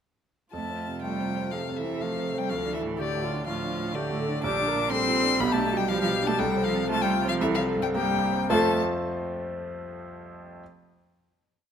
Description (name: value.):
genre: quick classical-period movement for piano quartet.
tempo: 107-125 BPM.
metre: 4/4.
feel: rubato.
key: F major.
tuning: A4 = 440 Hz.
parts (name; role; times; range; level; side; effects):
rich violin; melody; 0.5-8.8 s; D5 to D6; -29 LUFS; left 7 dB; none.
rich cello; second line; 0.5-8.8 s; D3 to D4; -30 LUFS; right 4 dB; none.
clear grand piano; accompaniment; 0.5-10.6 s; Bb1 to C5; -30 LUFS; right 1 dB; none.
dark viola; accompaniment; 0.5-8.8 s; F4 to Bb4; -32 LUFS; left 1 dB; none.
room: wet recital hall reverb, RT60 1.4 s.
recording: none.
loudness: -24 LUFS.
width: side -8 dB against mid.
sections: 0.5-8.5 A section; 8.5-10.6 final chord.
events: slowing down 3.5-8.5.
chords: 0.5 F; 2.5 Dm; 4.4 Gm/Bb; 5.4 G/B; 6.4 F/C; 7.4 C5; 8.5 F.